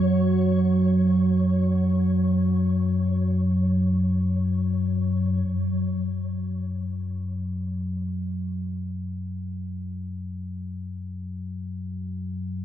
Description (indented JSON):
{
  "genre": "dark ambient drone",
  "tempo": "free time",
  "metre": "none",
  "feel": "none",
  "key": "unclear",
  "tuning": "A4 = 440 Hz",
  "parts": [
    { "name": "deep rumbling drone", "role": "drone", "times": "0.0-12.6 s", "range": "F#2 to F#3", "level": "-23 LUFS", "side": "equal", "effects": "built-in reverb" },
    { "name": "flickering grainy texture", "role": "texture", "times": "0.0-5.5 s", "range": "C#5", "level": "-37 LUFS", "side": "left 2 dB", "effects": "built-in reverb" }
  ],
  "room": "wet huge ambient reverb, RT60 7.5 s",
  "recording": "dreamy mix soaked in reverb",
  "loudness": "-23 LUFS",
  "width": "side -11 dB against mid",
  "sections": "0.0-5.5 A section; 5.5-12.6 B section",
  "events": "fade-out on synth texture 0.0-5.5",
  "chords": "0.0 F#5; 5.5 N.C."
}